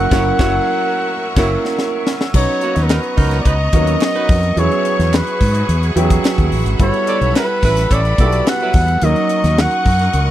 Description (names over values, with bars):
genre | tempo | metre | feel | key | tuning
polished 1980s jazz-funk pop | 108 BPM | 4/4 | straight | B major | A4 = 440 Hz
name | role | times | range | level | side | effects
warm flugelhorn | melody | 0.0-10.3 s | A#4 to F#5 | -19 LUFS | equal | none
warm concert grand piano | accompaniment | 0.0-10.3 s | F#3 to A#5 | -20 LUFS | right 2 dB | lush chorus
clear studio string section | sustained chords | 0.0-10.3 s | B3 to C#6 | -26 LUFS | left 1 dB | none
mellow fretless electric bass | bass | 0.0-10.3 s | F#1 to G#2 | -16 LUFS | equal | none
warm horn section | second line | 0.1-8.8 s | F#3 to D5 | -23 LUFS | right 5 dB | none
crisp fusion drum kit | drums | 0.1-10.3 s | crash cymbal, hi-hat, kick drum, snare drum | -17 LUFS | equal | none
group handclap | percussion | 2.9-9.7 s | none | -29 LUFS | right 14 dB | none
room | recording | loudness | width
little or no reverb | dry, close 1970s-style studio recording | -13 LUFS | side -12 dB against mid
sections
0.0-2.3 A section; 2.3-10.3 B section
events
band accent 0.1-2.3; drum fill 1.2-2.3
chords
0.0 F#7; 2.3 Bmaj9; 4.6 E69; 6.8 Gmaj13; 9.0 D#m7